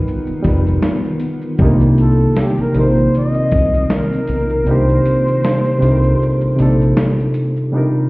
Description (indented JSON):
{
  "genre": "lo-fi hip hop",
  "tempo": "78 BPM",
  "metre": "4/4",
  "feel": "swing 57% on 16ths",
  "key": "C dorian",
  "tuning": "A4 = 441 Hz",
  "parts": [
    { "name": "barky reed electric piano", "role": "accompaniment", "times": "0.0-8.1 s", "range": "C3 to B4", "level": "-16 LUFS", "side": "equal", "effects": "low-pass filter" },
    { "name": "granular cloud pad", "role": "sustained chords", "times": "0.0-7.7 s", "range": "D#3 to G4", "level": "-24 LUFS", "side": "left 1 dB", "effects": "built-in reverb, low-pass filter" },
    { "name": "dusty soul sampler-style drum kit", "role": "drums", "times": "0.1-7.7 s", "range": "hi-hat, kick drum, shaker, snare drum", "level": "-17 LUFS", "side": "equal", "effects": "none" },
    { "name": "fat analog bass", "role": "bass", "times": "0.3-6.9 s", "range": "F1 to C2", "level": "-16 LUFS", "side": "equal", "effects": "none" },
    { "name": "breathy flugelhorn", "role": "melody", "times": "2.0-7.0 s", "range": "G4 to Eb5", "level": "-20 LUFS", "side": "equal", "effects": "low-pass filter, tape echo" }
  ],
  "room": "wet studio ambience, RT60 0.5 s",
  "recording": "heard muffled through a wall, stone room reverb, EQ",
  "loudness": "-12 LUFS",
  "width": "side -22 dB against mid",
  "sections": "0.0-7.7 A section",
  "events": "kick muted 4.7-7.7",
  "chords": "0.0 G7alt; 1.6 Cm11"
}